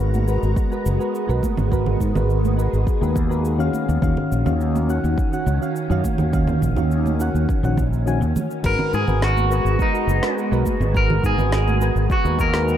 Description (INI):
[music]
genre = sunset chillout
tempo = 104 BPM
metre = 4/4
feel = straight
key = G# minor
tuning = A4 = 440 Hz
[part]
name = soft electric-piano-like synth keys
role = accompaniment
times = 0.0-12.8 s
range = D#3 to G#5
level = -26 LUFS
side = moving between left 7 dB and right 7 dB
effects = chorus, auto-pan, analog delay
[part]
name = soft string machine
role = sustained chords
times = 0.0-12.8 s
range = D#3 to A#5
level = -28 LUFS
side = equal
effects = phaser, ensemble chorus
[part]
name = fretless electric bass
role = bass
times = 0.0-12.8 s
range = F#1 to G#2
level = -20 LUFS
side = equal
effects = tube saturation, ensemble chorus
[part]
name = deep house drum kit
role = drums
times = 0.1-12.8 s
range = congas, crash cymbal, shaker, snare drum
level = -29 LUFS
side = right 2 dB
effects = dub echo
[part]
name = congas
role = percussion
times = 0.1-11.8 s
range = none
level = -30 LUFS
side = right 3 dB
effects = dub echo
[part]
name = electronic kick drum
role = drums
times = 0.6-12.5 s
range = none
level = -23 LUFS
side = equal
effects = none
[part]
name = electric guitar at the edge of break-up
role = melody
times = 8.7-12.8 s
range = D#4 to A#4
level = -23 LUFS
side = right 1 dB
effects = warbly pitch drift, dub echo
[sound]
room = light reverb, digital ambience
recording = echo-heavy mix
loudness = -18 LUFS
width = side -10 dB against mid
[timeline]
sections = 0.0-12.8 A section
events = none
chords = 0.0 G#m9; 3.7 D#m9; 8.6 G#m9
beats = 0.57 1.14 | 1.72 2.30 2.87 3.45 | 4.03 4.61 5.18 5.76 | 6.34 6.91 7.49 8.07 | 8.64 9.22 9.80 10.37 | 10.95 11.53 12.11 12.68